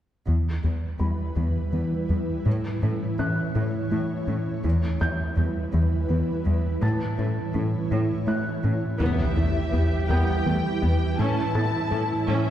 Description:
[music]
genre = cinematic, hybrid orchestral and electronic film score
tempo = 55 BPM (dotted quarters)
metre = 6/8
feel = straight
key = E dorian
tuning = A4 = 440 Hz
[part]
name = ethereal airy pad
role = sustained chords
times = 1.0-12.5 s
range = E3 to C#5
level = -30 LUFS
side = right 1 dB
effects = ensemble chorus, built-in reverb, tremolo
[part]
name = tight sequenced synth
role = arpeggios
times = 0.3-12.5 s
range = E3 to A4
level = -34 LUFS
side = equal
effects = chorus, tape echo
[part]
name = rubbery square bass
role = riff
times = 0.3-12.5 s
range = E2 to A3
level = -26 LUFS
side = left 1 dB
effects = none
[part]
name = bright symphonic cello section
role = bass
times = 0.3-12.4 s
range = E2 to A2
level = -29 LUFS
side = right 1 dB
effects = none
[part]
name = felt-muted upright piano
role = texture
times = 1.0-12.5 s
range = G5 to A6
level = -37 LUFS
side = equal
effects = tape echo
[part]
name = warm symphonic violin section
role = melody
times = 9.0-12.5 s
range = E5 to A5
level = -31 LUFS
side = left 3 dB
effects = none
[part]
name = rich symphonic viola section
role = accompaniment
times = 9.0-12.5 s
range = A3 to G4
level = -29 LUFS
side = right 2 dB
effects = none
[part]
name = impact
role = sound effects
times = 9.0-11.2 s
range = none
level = -31 LUFS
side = right 1 dB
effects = none
[sound]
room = wet scoring stage reverb, RT60 1.7 s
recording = heard from further back in the room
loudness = -22 LUFS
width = side -11 dB against mid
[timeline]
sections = 0.3-9.0 A section; 9.0-12.5 B section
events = impact 9.0-11.2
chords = 0.3 Em; 2.5 A; 4.6 Em; 6.8 A; 9.0 Em; 11.2 A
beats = | 0.28 1.37 | 2.46 3.55 | 4.64 5.73 | 6.82 7.91 | 9.01 10.10 | 11.19 12.28

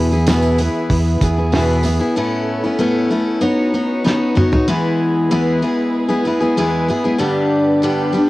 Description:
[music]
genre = folk rock and heartland rock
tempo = 95 BPM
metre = 4/4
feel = straight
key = E major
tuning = A4 = 438 Hz
[part]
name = picked steel-string acoustic guitar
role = accompaniment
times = 0.0-8.3 s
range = E2 to C#5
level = -16 LUFS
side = left 1 dB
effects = cassette tape
[part]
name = dark studio string section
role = sustained chords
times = 0.0-8.3 s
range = C#4 to B4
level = -24 LUFS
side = right 2 dB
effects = cassette tape
[part]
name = fingered electric bass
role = bass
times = 0.0-2.0 s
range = E2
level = -17 LUFS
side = right 1 dB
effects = none
[part]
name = tambourine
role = percussion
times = 0.1-2.0 s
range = none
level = -37 LUFS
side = right 12 dB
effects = none
[part]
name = cloth-damped thuddy drum kit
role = drums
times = 0.3-4.7 s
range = hi-hat, kick drum, snare drum, toms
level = -19 LUFS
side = equal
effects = none
[sound]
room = light reverb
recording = home recording on cassette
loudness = -14 LUFS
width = side -18 dB against mid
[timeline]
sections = 0.0-4.7 A section; 4.7-8.3 B section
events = drum fill 4.1-4.7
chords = 0.0 E; 2.2 Aadd9; 3.4 Badd9; 4.7 E; 7.2 G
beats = 0.27 0.90 1.53 | 2.16 2.79 3.42 4.05 | 4.68 5.32 5.95 6.58 | 7.21 7.83

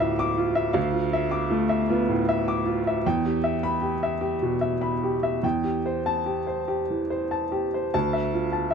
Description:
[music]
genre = neoclassical minimalist piano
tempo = 47-54 BPM (dotted quarters)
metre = 6/8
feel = rubato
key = D dorian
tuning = A4 = 438 Hz
[part]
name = warm upright piano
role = solo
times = 0.0-8.7 s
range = D2 to D6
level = -23 LUFS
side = equal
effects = none
[sound]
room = light reverb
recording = dark, warm production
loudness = -23 LUFS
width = side -6 dB against mid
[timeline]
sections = 0.0-7.9 A section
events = none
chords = 0.0 Dmadd9; 3.0 Em; 5.4 Am7/E; 7.9 Dmadd9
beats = | 0.76 1.90 | 3.05 4.21 | 5.43 6.68 | 7.93

